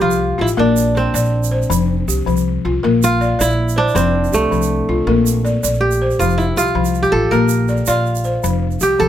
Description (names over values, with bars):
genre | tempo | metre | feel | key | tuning
west african traditional, West African string and xylophone music | 107 BPM (dotted quarters) | 12/8 | straight | F major | A4 = 441 Hz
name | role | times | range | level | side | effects
kora | melody | 0.0-9.1 s | A3 to Bb4 | -18 LUFS | right 2 dB | plate reverb
balafon | arpeggios | 0.0-9.1 s | F3 to D5 | -18 LUFS | left 5 dB | none
upright bass | bass | 0.0-9.1 s | F1 to C2 | -19 LUFS | right 1 dB | none
tube shaker | percussion | 0.0-9.0 s | none | -26 LUFS | right 10 dB | none
room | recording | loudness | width
light reverb | none | -14 LUFS | side -11 dB against mid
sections
0.0-9.1 A section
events
kora solo 0.0-9.1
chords
0.0 F; 0.6 Bb; 1.7 F5; 2.8 Bb; 4.0 F; 5.1 Bb; 6.2 F; 7.3 Bb; 8.4 F5